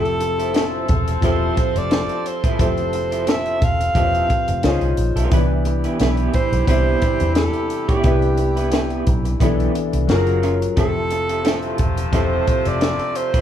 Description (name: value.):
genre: lush 1970s-style soul.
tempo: 88 BPM.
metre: 4/4.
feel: swing 54% on 16ths.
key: unclear.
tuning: A4 = 439 Hz.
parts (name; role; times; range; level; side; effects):
breathy alto saxophone; melody; 0.0-13.4 s; G4 to F5; -22 LUFS; right 2 dB; none.
dark baby grand piano; accompaniment; 0.0-13.4 s; C3 to E5; -24 LUFS; left 5 dB; none.
electric guitar through a small old amp; riff; 0.0-13.4 s; F3 to D5; -27 LUFS; right 4 dB; tremolo.
warm horn section; stabs; 0.0-13.4 s; C3 to A4; -28 LUFS; equal; none.
vintage muted fingered electric bass; bass; 0.0-12.9 s; E1 to E2; -22 LUFS; equal; none.
compact cocktail drum kit; drums; 0.1-13.4 s; hi-hat, kick drum, snare drum; -21 LUFS; equal; none.
room: moderate large studio reverb, RT60 0.9 s.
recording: band playing live in one room.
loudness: -16 LUFS.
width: side -10 dB against mid.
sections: 0.0-13.4 A section.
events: none.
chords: 0.0 Fmaj7; 4.6 Dbmaj7; 5.3 Cmaj7; 10.1 F#maj7; 10.8 Fmaj7.